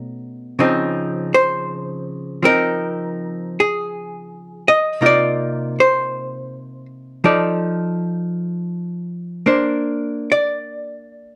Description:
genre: jazz ballad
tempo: 54 BPM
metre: 4/4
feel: swing 68% on 8ths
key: unclear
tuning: A4 = 440 Hz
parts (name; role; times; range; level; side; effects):
- archtop guitar, miked and amplified; solo; 0.0-11.4 s; B2 to D#5; -20 LUFS; equal; none
room: light reverb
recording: none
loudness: -19 LUFS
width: mono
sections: 0.0-11.4 A section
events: none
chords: 0.0 B9; 0.6 C#maj9; 5.0 Cm7; 7.2 F6; 9.5 Bbadd9

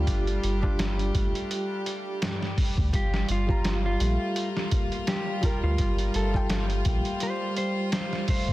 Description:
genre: trip hop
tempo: 84 BPM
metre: 4/4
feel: swing 56% on 16ths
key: G minor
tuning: A4 = 439 Hz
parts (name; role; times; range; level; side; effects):
- felt-muted upright piano; accompaniment; 0.0-8.3 s; G3 to Bb5; -33 LUFS; right 1 dB; harmonic tremolo, tape echo
- clear chamber violin section; sustained chords; 0.0-8.5 s; G3 to G4; -37 LUFS; left 2 dB; none
- concert harp; arpeggios; 0.0-8.5 s; G2 to D4; -34 LUFS; equal; tape echo
- soft dub sub bass; bass; 0.0-8.5 s; G1 to D2; -27 LUFS; equal; none
- trip hop sampler-style drum kit; drums; 0.1-8.5 s; hi-hat, kick drum, snare drum; -28 LUFS; equal; none
- mellow electric guitar; melody; 3.0-8.5 s; F4 to C5; -33 LUFS; equal; vintage 12-bit sampler grit, dub echo
room: little or no reverb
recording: dense, heavily limited modern master, vinyl crackle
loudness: -24 LUFS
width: side -16 dB against mid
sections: 0.0-8.5 A section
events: none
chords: 0.0 Dm/G; 2.9 Gm7

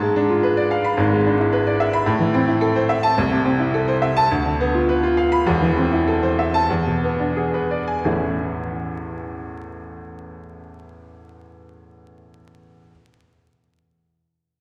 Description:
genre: classical, virtuoso piano study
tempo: 86-111 BPM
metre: 4/4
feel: rubato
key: unclear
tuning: A4 = 441 Hz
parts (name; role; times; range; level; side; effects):
- bright baby grand piano; solo; 0.0-12.9 s; E1 to B5; -20 LUFS; equal; none
room: wet church reverb, RT60 2.8 s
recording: recorded in a church or concert hall, vinyl crackle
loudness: -20 LUFS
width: mono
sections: 0.0-8.0 A section; 8.0-10.7 B section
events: slowing down 2.1-8.0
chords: 0.0 G#dim7; 1.0 E7/G#; 2.1 Am; 3.2 Am/C; 4.3 Bdim/D; 5.5 Am/E; 6.7 E7; 8.0 A

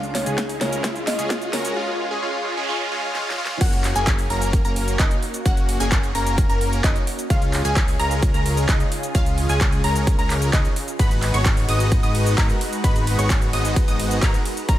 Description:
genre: EDM, festival progressive house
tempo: 130 BPM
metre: 4/4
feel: straight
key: F# major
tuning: A4 = 440 Hz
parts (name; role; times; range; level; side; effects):
- kalimba; melody; 0.0-1.8 s; C#5 to E#5; -30 LUFS; equal; dub echo
- lush unison pad; sustained chords; 0.0-14.8 s; C#3 to B4; -31 LUFS; left 1 dB; chorus, phaser, sidechain pumping
- supersaw chords; riff; 0.0-14.8 s; G#3 to D#5; -26 LUFS; equal; sidechain pumping, dub echo
- fat analog bass; bass; 0.0-14.8 s; F#1 to C#2; -24 LUFS; equal; sidechain pumping
- big-room dance drum kit; drums; 0.0-14.8 s; cabasa, crash cymbal, handclaps, hi-hat, ride cymbal, snare drum; -27 LUFS; equal; overdrive
- riser and noise sweep; sound effects; 0.0-3.6 s; none; -31 LUFS; right 1 dB; none
- electronic kick drum; drums; 0.4-14.8 s; none; -20 LUFS; equal; overdrive, high-pass filter on kick
- wide unison pluck; arpeggios; 3.6-14.8 s; D#5 to D#6; -28 LUFS; equal; sidechain pumping, dub echo
room: light reverb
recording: high-pass filter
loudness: -18 LUFS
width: side -13 dB against mid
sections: 0.0-3.6 A section; 3.6-14.8 B section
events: build-up 0.0-3.6; drum fill 0.0-1.8, 3.1-3.6; riser 0.0-1.8; filter sweep on supersaw synth 0.0-3.6; filter sweep 0.0-3.6; noise sweep 1.8-3.6; drop 3.6-14.8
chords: 0.0 C#; 3.6 F#; 7.3 C#; 11.0 G#m7

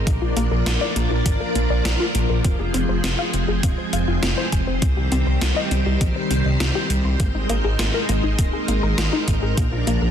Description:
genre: synthwave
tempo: 101 BPM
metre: 4/4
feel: straight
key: unclear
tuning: A4 = 440 Hz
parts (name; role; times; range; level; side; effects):
- string machine, full ensemble; sustained chords; 0.0-10.1 s; Eb3 to D5; -24 LUFS; equal; ensemble chorus, sidechain pumping
- analog pluck; arpeggios; 0.0-10.1 s; Bb3 to Ab5; -28 LUFS; left 5 dB; chorus, ping-pong delay
- dark detuned saw bass; bass; 0.0-10.1 s; Eb1 to C2; -22 LUFS; equal; sidechain pumping
- electronic kick drum; drums; 0.1-9.7 s; none; -22 LUFS; equal; overdrive
- gated 80s digital drum machine; drums; 0.1-10.0 s; hi-hat, snare drum; -27 LUFS; equal; gated reverb, gated reverb snare, overdrive
room: light reverb, digital ambience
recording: dense, heavily limited modern master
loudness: -18 LUFS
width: side -8 dB against mid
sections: 0.0-10.1 A section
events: none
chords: 0.1 Bb; 2.4 Fm; 4.8 Cm; 7.2 Abadd9; 9.6 Bb

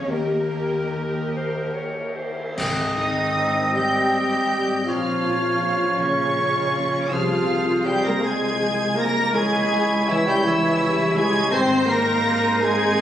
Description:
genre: cinematic, emotional film score for orchestra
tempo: 47-56 BPM (dotted quarters)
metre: 6/8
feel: rubato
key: Ab major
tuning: A4 = 440 Hz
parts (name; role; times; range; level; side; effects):
- rich studio violin section; melody; 0.0-13.0 s; Eb5 to C7; -29 LUFS; left 2 dB; none
- rich chamber violin section; second line; 0.0-13.0 s; Bb4 to C6; -34 LUFS; right 1 dB; none
- rich studio viola section; accompaniment; 0.0-13.0 s; Db4 to C5; -27 LUFS; right 1 dB; none
- concert harp; arpeggios; 0.0-13.0 s; Ab2 to Ab5; -30 LUFS; left 5 dB; none
- dark studio cello section; bass; 0.0-13.0 s; Db3 to C4; -29 LUFS; right 1 dB; none
- rich studio double bass section; bass; 0.0-13.0 s; Ab1 to Eb2; -31 LUFS; right 2 dB; none
- cymbal swell, clash cymbals and concert bass drum; percussion; 0.1-4.1 s; none; -31 LUFS; left 1 dB; none
- bright clarinet; second line; 1.4-13.0 s; C4 to Db5; -28 LUFS; equal; none
- warm oboe; second line; 2.6-13.0 s; C5 to Eb5; -25 LUFS; right 2 dB; none
- large flute ensemble; second line; 3.0-13.0 s; Db5 to C6; -30 LUFS; equal; none
- warm French horn section; sustained chords; 3.0-13.0 s; Db3 to C4; -27 LUFS; left 1 dB; none
room: wet scoring stage reverb, RT60 1.9 s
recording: recorded on a phone in the room, club reverb, compression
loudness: -19 LUFS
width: side -10 dB against mid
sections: 0.0-2.6 A section; 2.6-13.0 B section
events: band accent 2.6-3.4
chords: 0.1 Eb; 2.6 Ab; 4.9 Bbm; 7.1 Fm/C; 9.3 Dbm; 11.5 Ab

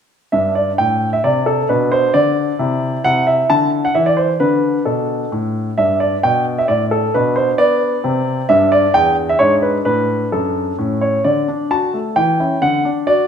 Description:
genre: classical-period piano sonatina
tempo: 132 BPM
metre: 3/4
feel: straight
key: G major, D major from 8.5 s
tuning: A4 = 439 Hz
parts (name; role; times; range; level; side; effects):
- clear baby grand piano; solo; 0.3-13.3 s; E2 to A5; -14 LUFS; equal; none
room: moderate recital hall reverb, RT60 1.4 s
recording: minimal, uncompressed stereo recording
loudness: -14 LUFS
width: side -7 dB against mid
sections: 0.3-11.3 A section; 11.3-13.3 B section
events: none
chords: 0.3 G5; 1.7 Bm; 2.6 C; 3.0 C69; 4.4 D5; 5.8 G; 7.1 Bm; 8.0 N.C.; 8.5 Em7/G; 9.4 G#dim; 9.9 D/A; 10.8 A; 11.3 D; 12.2 Em6; 12.6 D

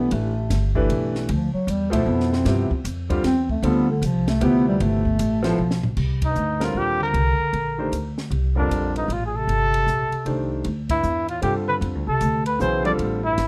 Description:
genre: modal jazz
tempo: 154 BPM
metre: 3/4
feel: swing 64% on 8ths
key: C dorian from 6.0 s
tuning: A4 = 440 Hz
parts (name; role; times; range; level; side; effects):
- dark bass clarinet; second line; 0.0-13.5 s; F2 to C4; -27 LUFS; equal; none
- warm concert grand piano; accompaniment; 0.0-13.2 s; B2 to C5; -28 LUFS; equal; none
- upright bass; bass; 0.0-13.5 s; G1 to G2; -27 LUFS; equal; none
- compact cocktail drum kit; drums; 0.1-13.5 s; crash cymbal, hi-hat, kick drum, ride cymbal, snare drum, toms; -32 LUFS; equal; none
- breathy trumpet; melody; 6.2-13.5 s; D4 to D5; -26 LUFS; equal; none
room: light reverb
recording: none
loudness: -22 LUFS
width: mono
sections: 0.0-6.0 A section; 6.0-13.5 B section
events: bass clarinet solo 0.0-6.0; drum fill 5.6-6.0; band accent 6.2, 10.8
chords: 0.0 A9sus4; 1.3 G9sus4; 6.0 Cm11; 10.6 Dm11

